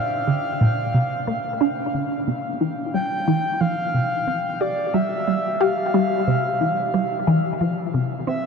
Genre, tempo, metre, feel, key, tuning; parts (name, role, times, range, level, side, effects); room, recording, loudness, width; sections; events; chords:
ambient; 90 BPM; 4/4; straight; A4 = 440 Hz
breathy flute-like synth lead; melody; 0.0-8.5 s; D5 to G5; -24 LUFS; equal; chorus, tremolo, ping-pong delay
resonant blip pluck; riff; 0.0-8.5 s; Bb2 to G4; -21 LUFS; equal; phaser, analog chorus, ping-pong delay
wet huge ambient reverb, RT60 8.1 s; dreamy mix soaked in reverb; -20 LUFS; side -5 dB against mid
0.0-8.5 A section
filter sweep on synth arpeggio sound 0.0-8.5
0.0 Gm (rootless); 2.3 Csus4